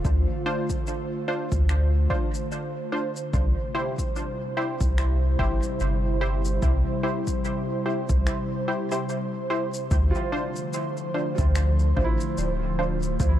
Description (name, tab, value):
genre	ambient dub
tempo	73 BPM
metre	4/4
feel	swing 58% on 16ths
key	D minor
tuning	A4 = 440 Hz
part	airy breathy pad	sustained chords	0.0-13.4 s	C3 to C5	-29 LUFS	right 1 dB	chorus
part	soft dub sub bass	bass	0.0-13.4 s	D1 to D2	-22 LUFS	equal	none
part	electronic kick drum	drums	0.0-13.4 s	none	-28 LUFS	equal	overdrive
part	electronic shaker and finger snaps	drums	0.0-13.4 s	none	-38 LUFS	left 2 dB	overdrive, dub echo
part	filtered dub chord stab	stabs	0.5-13.0 s	D4 to C5	-31 LUFS	equal	chorus, dub echo
part	felt-muted upright piano	arpeggios	10.1-13.4 s	E4 to F4	-36 LUFS	right 2 dB	dub echo
room	little or no reverb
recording	dark, warm production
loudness	-23 LUFS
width	side -12 dB against mid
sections	0.0-9.9 A section; 9.9-13.4 B section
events	break 8.3-9.9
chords	0.0 Dm7; 3.3 C; 9.9 Dm7